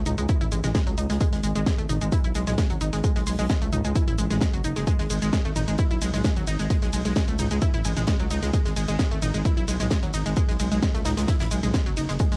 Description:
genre	driving peak-time techno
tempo	131 BPM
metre	4/4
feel	straight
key	G# phrygian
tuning	A4 = 440 Hz
part	growling FM bass	bass	0.0-12.4 s	F#1 to C#2	-29 LUFS	equal	sidechain pumping
part	unison pluck	riff	0.1-12.4 s	F#3 to E4	-33 LUFS	equal	overdrive, cassette tape, sidechain pumping, analog delay
part	natural country drum kit	drums	0.1-12.4 s	hi-hat, snare drum	-44 LUFS	equal	none
part	techno drum kit	drums	0.1-12.4 s	hi-hat, ride cymbal, shaker, snare drum, toms	-33 LUFS	equal	cassette tape
part	electronic kick drum	drums	0.3-12.3 s	none	-27 LUFS	equal	cassette tape
room	light reverb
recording	home recording on cassette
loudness	-24 LUFS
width	mono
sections	0.0-12.4 A section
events	none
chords	0.0 G#m

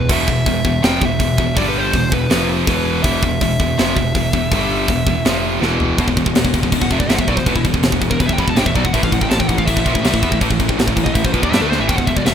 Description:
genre	heavy metal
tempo	163 BPM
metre	4/4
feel	straight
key	E minor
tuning	A4 = 440 Hz
part	high-gain lead guitar	melody	0.0-12.3 s	E4 to B5	-23 LUFS	left 1 dB	distortion, digital delay
part	scooped high-gain guitar	riff	0.0-12.3 s	E2 to D4	-22 LUFS	right 10 dB	distortion
part	thick fuzz guitar	riff	0.0-12.3 s	E2 to D4	-23 LUFS	equal	distortion
part	tight distorted guitar	riff	0.0-12.3 s	E2 to D4	-23 LUFS	left 11 dB	distortion
part	growling picked electric bass	bass	0.0-12.3 s	E1 to G2	-23 LUFS	equal	overdrive
part	tight metal drum kit	drums	0.1-12.3 s	crash cymbal, hi-hat, kick drum, snare drum, toms	-18 LUFS	equal	none
room	small room ambience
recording	rough home demo mix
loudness	-14 LUFS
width	side -8 dB against mid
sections	0.0-6.0 A section; 6.0-12.3 B section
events	half time 0.0-6.0; drum fill 5.6-6.0, 11.7; lead electric guitar solo 6.0-12.3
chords	0.0 E5; 1.6 G5; 1.9 E5; 2.3 F5; 2.7 E5; 4.5 G5; 4.9 E5; 5.3 F5; 5.6 E5; 6.0 Em; 8.9 A5

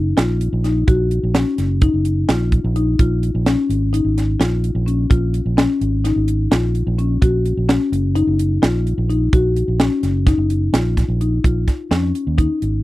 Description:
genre	progressive instrumental, band music in an uneven meter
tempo	256 BPM (eighths)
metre	9/8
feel	straight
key	Bb minor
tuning	A4 = 440 Hz
part	marimba with soft mallets	arpeggios	0.0-12.8 s	Db4 to Gb4	-20 LUFS	left 4 dB	none
part	fingered electric bass	bass	0.0-12.8 s	Gb1 to F2	-18 LUFS	right 1 dB	none
part	tight funk drum kit	drums	0.2-12.7 s	hi-hat, kick drum, snare drum	-16 LUFS	right 1 dB	none
room	little or no reverb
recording	dry, close 1970s-style studio recording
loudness	-15 LUFS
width	side -17 dB against mid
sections	0.0-11.4 A section; 11.4-12.8 B section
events	none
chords	0.0 Gb6; 3.0 Bbm7; 7.2 Gb6; 11.4 Bbm7

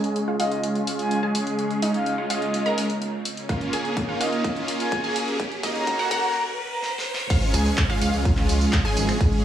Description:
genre	EDM, festival progressive house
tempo	126 BPM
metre	4/4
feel	straight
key	Db major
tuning	A4 = 443 Hz
part	lush unison pad	sustained chords	0.0-9.4 s	Db3 to Db5	-32 LUFS	right 1 dB	chorus, sidechain pumping
part	wide unison pluck	arpeggios	0.0-9.4 s	Eb5 to Bb5	-33 LUFS	equal	sidechain pumping, dub echo
part	supersaw chords	riff	0.0-9.4 s	Ab3 to Bb4	-26 LUFS	right 1 dB	sidechain pumping, low-pass filter, dub echo
part	big-room dance drum kit	drums	0.0-9.4 s	crash cymbal, finger snaps, handclaps, hi-hat, ride cymbal, snare drum, tambourine	-31 LUFS	left 1 dB	studio reverb
part	riser	sound effects	2.2-7.3 s	none	-34 LUFS	right 1 dB	none
part	breathy flute-like synth lead	melody	0.4-6.9 s	Eb5 to Bb5	-29 LUFS	left 1 dB	chorus, dub echo
part	electronic kick drum	drums	3.5-9.3 s	none	-22 LUFS	equal	studio reverb
part	wide detuned saw bass	bass	7.5-9.1 s	Ab1 to Db2	-23 LUFS	equal	chorus, sidechain pumping
room	moderate lush hall reverb, RT60 2.1 s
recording	high-pass filter, small room ambience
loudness	-21 LUFS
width	side -10 dB against mid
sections	0.0-7.3 A section; 7.3-9.4 B section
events	build-up 0.0-7.3; filter sweep on supersaw synth 0.0-7.3; filter sweep on synth pluck 0.0-7.3; filter sweep on analog synth pad 0.0-7.3; filter sweep 0.0-7.3; riser 2.2-7.3; drum fill 3.5-6.3, 6.8-7.3; break 6.3-7.3; drop 7.3-9.4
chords	0.0 Db; 3.5 Bbm; 5.4 Gb; 7.3 Db

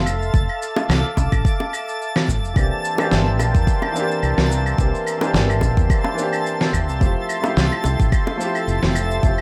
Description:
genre	sunset chillout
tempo	108 BPM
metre	4/4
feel	swing 55% on 16ths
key	F major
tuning	A4 = 440 Hz
part	lush unison pad	sustained chords	0.0-9.4 s	A4 to D6	-30 LUFS	equal	chorus, plate reverb
part	woody fretless electric bass	bass	0.0-9.4 s	F1 to E2	-23 LUFS	equal	ensemble chorus
part	twinkling granular texture	texture	0.0-9.4 s	A5 to A6	-30 LUFS	equal	built-in reverb, plate reverb
part	electronic claves, cabasa and snare drum	drums	0.1-9.4 s	none	-26 LUFS	equal	none
part	electronic kick drum	drums	0.3-9.4 s	none	-21 LUFS	equal	none
part	bongos	percussion	0.8-8.4 s	none	-28 LUFS	equal	none
part	clear concert grand piano	accompaniment	2.5-9.4 s	E3 to G4	-27 LUFS	equal	digital delay, plate reverb
room	wet studio reverb, RT60 0.6 s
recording	rough home demo mix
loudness	-20 LUFS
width	mono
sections	0.0-9.4 A section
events	none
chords	0.0 Fmaj7; 2.6 C7; 7.0 Fmaj7

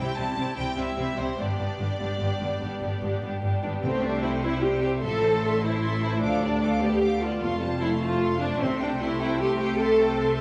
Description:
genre	cinematic, heroic adventure film score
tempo	100 BPM (dotted quarters)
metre	12/8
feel	straight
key	C major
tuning	A4 = 440 Hz
part	warm symphonic violin section	melody	0.0-10.4 s	C5 to D6	-38 LUFS	equal	none
part	warm studio violin section	second line	0.0-10.4 s	D4 to A5	-36 LUFS	equal	none
part	warm symphonic viola section	accompaniment	0.0-10.4 s	G3 to A4	-29 LUFS	equal	none
part	clear symphonic cello section	bass	0.0-10.4 s	D2 to C3	-33 LUFS	equal	none
part	warm symphonic double bass section	bass	0.0-10.4 s	F1 to D2	-34 LUFS	equal	none
part	timpani	percussion	3.8-4.4, 8.6-9.2 s	C3	-40 LUFS	equal	none
part	mellow French horn section	sustained chords	3.9-10.4 s	D3 to B3	-35 LUFS	equal	none
room	moderate scoring stage reverb, RT60 1.6 s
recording	none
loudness	-26 LUFS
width	mono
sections	0.0-3.8 A section; 3.8-10.4 A section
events	none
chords	0.0 C; 1.4 G; 3.8 C; 5.0 Am; 6.2 Dm; 7.4 F; 8.6 C

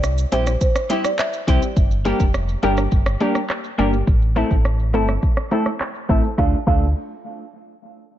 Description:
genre	dancehall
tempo	104 BPM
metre	4/4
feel	straight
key	D minor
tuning	A4 = 436 Hz
part	sub bass with octave	bass	0.0-6.9 s	F1 to D2	-21 LUFS	equal	none
part	afro-pop drum kit	drums	0.0-6.8 s	crash cymbal, handclaps, hi-hat, kick drum, rim click, shaker, snare drum	-20 LUFS	equal	none
part	folk marimba with soft mallets	melody	0.3-1.6, 6.4-6.9 s	C5 to F5	-26 LUFS	right 3 dB	digital delay
part	analog pluck	accompaniment	0.3-6.9 s	G3 to A4	-24 LUFS	left 2 dB	chorus
part	electric guitar at the edge of break-up	arpeggios	0.3-6.8 s	A3 to C5	-26 LUFS	right 1 dB	digital delay
room	digital ambience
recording	low-pass filter, nothing above 7.9 kHz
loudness	-17 LUFS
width	side -12 dB against mid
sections	0.0-6.4 A section; 6.4-8.2 B section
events	filter sweep 0.0-6.4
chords	0.0 C; 1.8 Gm; 4.1 Am; 6.4 Dm

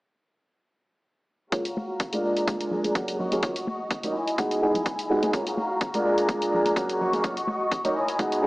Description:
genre	filtered disco house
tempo	126 BPM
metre	4/4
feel	swing 54% on 16ths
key	F# major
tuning	A4 = 440 Hz
part	warm baby grand piano	accompaniment	1.5-8.5 s	F#3 to G#4	-26 LUFS	equal	phaser, sidechain pumping, low-pass filter
part	muted chamber string section	sustained chords	1.5-8.5 s	E4 to C#6	-28 LUFS	equal	sidechain pumping, low-pass filter
part	electronic hi-hat	drums	1.5-8.4 s	none	-37 LUFS	equal	sidechain pumping on hats, small room reverb
part	electronic kick drum	drums	1.5-8.3 s	none	-29 LUFS	equal	high-pass filter on kick, small room reverb
part	tambourine and congas	percussion	1.5-8.4 s	none	-37 LUFS	left 1 dB	sidechain pumping on perc, low-pass filter on perc
room	wet lush hall reverb, RT60 2.1 s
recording	dreamy mix soaked in reverb, AM radio sound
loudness	-23 LUFS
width	side -20 dB against mid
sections	1.5-8.5 A section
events	filter sweep 1.5-8.5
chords	1.5 F#maj7; 2.2 A#7; 3.2 D#m7; 4.1 Emaj7; 5.3 F#maj7; 6.0 A#7; 7.0 D#m7; 8.0 Emaj7

